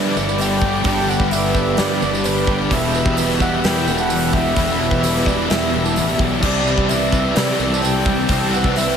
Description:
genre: rock, shoegaze and dream pop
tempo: 129 BPM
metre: 4/4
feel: straight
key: unclear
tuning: A4 = 439 Hz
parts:
  - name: breathy flute-like synth lead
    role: melody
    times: 0.0-9.0 s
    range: B4 to G5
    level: -23 LUFS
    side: equal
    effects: chorus, tremolo, ping-pong delay
  - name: chorused pulse-width pad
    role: sustained chords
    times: 0.0-9.0 s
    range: G4 to E6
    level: -26 LUFS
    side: right 1 dB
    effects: none
  - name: fingerpicked twelve-string acoustic guitar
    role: arpeggios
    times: 0.0-9.0 s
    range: G4 to B4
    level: -28 LUFS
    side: right 5 dB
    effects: lush chorus, ping-pong delay
  - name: biting overdriven guitar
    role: riff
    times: 0.0-9.0 s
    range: E2 to C4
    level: -26 LUFS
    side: equal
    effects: tremolo
  - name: overdriven semi-hollow guitar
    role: riff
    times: 0.0-9.0 s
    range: E2 to G4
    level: -26 LUFS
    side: right 9 dB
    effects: reverse reverb
  - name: thick fuzz guitar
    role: riff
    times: 0.0-9.0 s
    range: E2 to C4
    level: -22 LUFS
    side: left 8 dB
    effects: distortion, ensemble chorus
  - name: fuzz fingered electric bass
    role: bass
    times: 0.0-9.0 s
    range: E1 to C3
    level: -23 LUFS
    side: equal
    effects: overdrive
  - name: tambourine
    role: percussion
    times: 0.2-9.0 s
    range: none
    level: -32 LUFS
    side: right 12 dB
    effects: none
  - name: huge arena drum kit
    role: drums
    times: 0.4-8.9 s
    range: crash cymbal, hi-hat, kick drum, snare drum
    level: -22 LUFS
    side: equal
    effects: none
room: moderate huge ambient reverb, RT60 4.9 s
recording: dreamy mix soaked in reverb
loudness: -15 LUFS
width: side -7 dB against mid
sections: 0.0-9.0 A section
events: none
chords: 0.0 G; 2.7 Em; 6.4 Cadd9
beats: 0.39 | 0.85 1.32 1.78 2.25 | 2.71 3.18 3.65 4.11 | 4.58 5.04 5.51 5.97 | 6.44 6.90 7.37 7.83 | 8.30 8.77

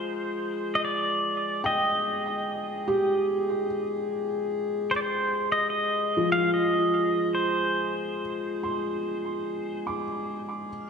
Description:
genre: ambient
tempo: 73 BPM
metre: 4/4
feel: straight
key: unclear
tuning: A4 = 439 Hz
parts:
  - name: pedal steel guitar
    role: melody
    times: 0.0-9.8 s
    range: C5 to F5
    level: -27 LUFS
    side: right 1 dB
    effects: tape echo
  - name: felt-muted upright piano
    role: arpeggios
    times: 0.0-10.9 s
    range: F3 to D6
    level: -29 LUFS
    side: right 1 dB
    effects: tape echo
  - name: pedal harmonium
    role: drone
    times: 0.0-10.9 s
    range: Ab3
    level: -32 LUFS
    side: left 4 dB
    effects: stereo widening
  - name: wind-like tuned noise texture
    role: texture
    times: 10.7-10.9 s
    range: F6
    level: -53 LUFS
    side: right 1 dB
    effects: built-in reverb
room: wet concert hall reverb, RT60 2.2 s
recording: cassette tape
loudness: -25 LUFS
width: side -6 dB against mid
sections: 0.0-10.9 A section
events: none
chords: 0.0 Fmadd9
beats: 0.00 | 0.82 1.64 2.46 3.28 | 4.11 4.93 5.75 6.57 | 7.39 8.21 9.04 9.86 | 10.68

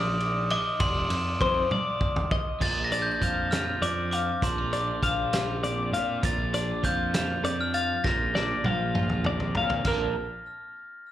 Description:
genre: math rock and midwest emo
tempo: 66 BPM (dotted quarters)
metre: 6/8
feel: straight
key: Bb major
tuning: A4 = 440 Hz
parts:
  - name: glockenspiel with brass mallets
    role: melody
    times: 0.0-10.1 s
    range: C6 to Bb6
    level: -30 LUFS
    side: right 1 dB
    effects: slapback echo, digital delay
  - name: twelve-string electric guitar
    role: arpeggios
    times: 0.0-10.2 s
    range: Bb4 to F5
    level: -30 LUFS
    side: left 4 dB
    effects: slapback echo
  - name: fuzz picked electric bass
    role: bass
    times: 0.0-10.1 s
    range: F1 to Bb2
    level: -31 LUFS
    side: equal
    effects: overdrive
  - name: loose indie drum kit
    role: drums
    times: 0.2-10.0 s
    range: crash cymbal, hi-hat, kick drum, ride cymbal, snare drum, toms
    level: -30 LUFS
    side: equal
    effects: none
  - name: twelve-string electric guitar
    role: accompaniment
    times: 2.6-10.2 s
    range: F2 to A4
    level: -34 LUFS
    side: right 8 dB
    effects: spring reverb, slapback echo
room: light reverb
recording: live gig heard through the venue's PA, club reverb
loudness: -24 LUFS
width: side -12 dB against mid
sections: 0.0-2.6 A section; 2.6-9.9 B section; 9.9-11.1 C section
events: drum fill 1.7-2.6, 8.1-9.9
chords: 0.0 Bb; 0.8 F5; 2.6 Bb; 9.9 Bbmaj7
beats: | 0.81 1.71 | 2.62 3.52 | 4.43 5.33 | 6.24 7.15 | 8.05 8.96 | 9.86

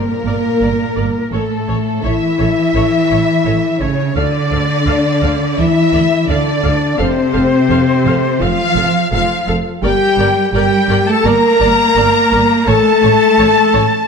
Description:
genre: cinematic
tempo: 85 BPM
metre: 4/4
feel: straight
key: G dorian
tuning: A4 = 440 Hz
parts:
  - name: warm symphonic violin section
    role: melody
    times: 0.0-14.1 s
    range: A4 to Bb5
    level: -20 LUFS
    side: left 4 dB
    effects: none
  - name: bright concert flute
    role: second line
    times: 0.0-14.1 s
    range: A4 to Bb5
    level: -22 LUFS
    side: left 2 dB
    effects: none
  - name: warm symphonic violin section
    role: second line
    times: 0.0-14.1 s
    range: A4 to Bb5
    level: -23 LUFS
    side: left 1 dB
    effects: none
  - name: mellow French horn section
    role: sustained chords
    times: 0.0-14.1 s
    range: A3 to Bb4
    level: -16 LUFS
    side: left 4 dB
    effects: none
  - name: warm symphonic cello section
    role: bass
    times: 0.0-14.1 s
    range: A2 to Bb3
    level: -18 LUFS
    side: right 3 dB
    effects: none
  - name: impact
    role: sound effects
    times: 0.0-1.3 s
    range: none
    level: barely audible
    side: none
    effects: none
  - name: rich symphonic viola section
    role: accompaniment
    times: 0.3-13.8 s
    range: A4 to F5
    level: -25 LUFS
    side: right 1 dB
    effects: none
  - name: rich symphonic double bass section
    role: bass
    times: 0.3-13.8 s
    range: F1 to D2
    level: -20 LUFS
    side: right 4 dB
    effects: none
room: moderate scoring stage reverb, RT60 1.6 s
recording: dark, warm production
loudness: -11 LUFS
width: side -5 dB against mid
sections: 0.0-14.1 A section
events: impact 0.0-1.3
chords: 0.0 Gm; 1.3 A; 4.2 Dm; 7.0 F; 9.8 Gm; 12.7 A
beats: 0.62 | 1.33 2.05 2.76 3.47 | 4.17 4.88 5.59 6.29 | 7.00 7.71 8.42 9.13 | 9.84 10.54 11.25 11.96 | 12.68 13.39

